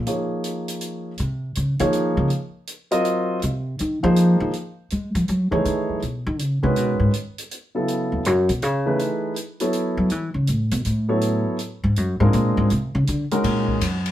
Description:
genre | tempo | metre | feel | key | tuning
modal jazz | 161 BPM | 3/4 | swing 65% on 8ths | Eb dorian, C# minor from 4.5 s | A4 = 439 Hz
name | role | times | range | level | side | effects
upright bass | bass | 0.0-14.1 s | D#2 to G#3 | -21 LUFS | equal | none
warm concert grand piano | accompaniment | 0.1-13.8 s | C#3 to Eb5 | -22 LUFS | equal | none
open jazz drum kit | drums | 0.1-14.1 s | hi-hat, kick drum, ride cymbal | -32 LUFS | equal | none
room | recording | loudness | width
moderate studio reverb, RT60 0.7 s | band playing live in one room | -20 LUFS | side -12 dB against mid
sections
0.0-4.5 A section; 4.5-13.4 A section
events
upright bass solo 0.0-13.4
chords
0.0 Ebm11; 3.4 Ab69; 4.5 C#9sus4; 9.0 B9sus4; 12.3 A#7; 13.4 Ebm11

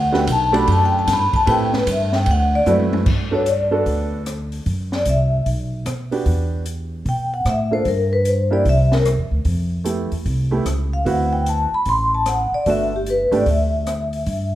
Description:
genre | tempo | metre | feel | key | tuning
jazz, small-group swing and bop | 150 BPM | 4/4 | swing 65% on 8ths | G major | A4 = 439 Hz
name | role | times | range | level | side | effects
vibraphone with medium mallets | melody | 0.0-14.6 s | G4 to C6 | -19 LUFS | left 2 dB | none
upright bass | bass | 0.0-14.6 s | G1 to B2 | -20 LUFS | equal | none
warm upright piano | accompaniment | 0.1-13.5 s | A3 to D5 | -23 LUFS | right 4 dB | none
open jazz drum kit | drums | 0.1-14.4 s | crash cymbal, hi-hat, kick drum, ride cymbal, rim click, snare drum, toms | -26 LUFS | equal | none
room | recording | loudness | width
moderate scoring stage reverb, RT60 1.7 s | recorded in a church or concert hall | -16 LUFS | side -13 dB against mid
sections
0.0-3.1 A section; 3.1-14.6 B section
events
vibraphone solo 0.0-3.1; drum fill 2.7-3.1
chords
0.0 Gmaj9; 1.5 Am7; 2.3 D13; 3.1 Gmaj9; 4.7 C; 5.5 B5; 6.3 Em9; 7.9 Gm; 8.7 Cadd9; 9.5 Fmaj9#11; 11.1 D13; 12.7 Gmaj9

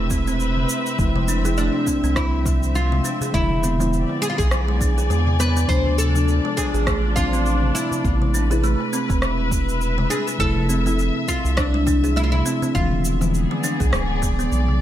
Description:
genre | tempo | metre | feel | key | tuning
organic downtempo | 102 BPM | 4/4 | swing 57% on 16ths | A harmonic minor | A4 = 439 Hz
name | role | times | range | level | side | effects
muted felt-like synth keys | accompaniment | 0.0-14.8 s | C3 to E5 | -28 LUFS | left 3 dB | chorus, vintage 12-bit sampler grit, sidechain pumping, digital delay
muted studio string section | sustained chords | 0.0-14.8 s | B3 to G#5 | -28 LUFS | left 2 dB | sidechain pumping
round analog bass | bass | 0.0-14.8 s | D1 to E2 | -21 LUFS | equal | sidechain pumping
kalimba | arpeggios | 0.1-14.5 s | G#3 to G#4 | -26 LUFS | right 2 dB | digital delay
electronic kick drum | drums | 0.1-14.4 s | none | -24 LUFS | equal | none
electronic shaker and rim click | drums | 0.1-14.7 s | none | -29 LUFS | equal | none
darbuka | percussion | 0.1-14.8 s | none | -32 LUFS | equal | none
oud | melody | 1.6-14.5 s | D4 to C5 | -26 LUFS | left 1 dB | ping-pong delay
room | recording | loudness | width
light reverb, small room ambience | bright 1980s-style digital production | -18 LUFS | side -12 dB against mid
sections
0.0-14.8 A section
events
none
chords
0.0 Amadd9 (rootless); 1.0 Fmaj7; 3.3 E7b9; 5.7 Dm7; 8.0 Amadd9; 10.4 Fmaj7; 12.8 E7b9

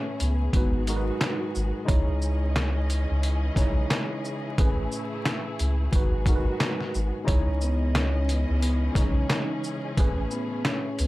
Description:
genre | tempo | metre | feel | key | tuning
hip hop, boom-bap hip-hop | 89 BPM | 4/4 | swing 59% on 16ths | C# minor | A4 = 440 Hz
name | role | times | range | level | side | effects
vibraphone with soft mallets | melody | 0.0-1.4, 7.6-11.1 s | B3 to D#5 | -33 LUFS | left 1 dB | high-pass filter, low-pass filter, ping-pong delay
tine electric piano | accompaniment | 0.0-11.1 s | G#2 to C#5 | -32 LUFS | right 1 dB | overdrive, fast stereo tremolo, high-pass filter, low-pass filter
warm studio string section | sustained chords | 0.0-11.1 s | C#3 to D#5 | -36 LUFS | left 1 dB | high-pass filter, low-pass filter
soft dub sub bass | bass | 0.2-11.1 s | G#1 to C#2 | -25 LUFS | equal | none
trip hop sampler-style drum kit | drums | 0.2-11.1 s | handclaps, hi-hat, kick drum, shaker, snare drum | -25 LUFS | equal | none
room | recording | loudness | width
little or no reverb | vinyl crackle | -23 LUFS | side -18 dB against mid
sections
0.0-11.1 A section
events
none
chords
0.0 Amaj7; 0.5 G#m7; 1.9 C#madd9; 4.6 Amaj7; 5.9 G#m7; 7.3 C#madd9; 10.0 Amaj7

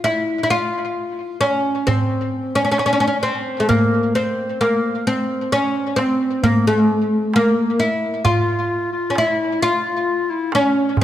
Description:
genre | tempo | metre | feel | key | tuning
Turkish makam ensemble | 132 BPM (eighths) | 10/8 | straight | unclear | A4 = 439 Hz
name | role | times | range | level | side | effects
oud | melody | 0.0-11.0 s | A3-40c to F4 | -17 LUFS | equal | tape echo
darbuka | percussion | 0.1-11.0 s | none | -23 LUFS | right 2 dB | none
mellow clarinet | second line | 8.3-11.0 s | C4 to F4 | -22 LUFS | left 3 dB | none
room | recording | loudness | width
moderate recital hall reverb, RT60 1.7 s | none | -16 LUFS | side -12 dB against mid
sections
0.0-11.0 A section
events
none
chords
none

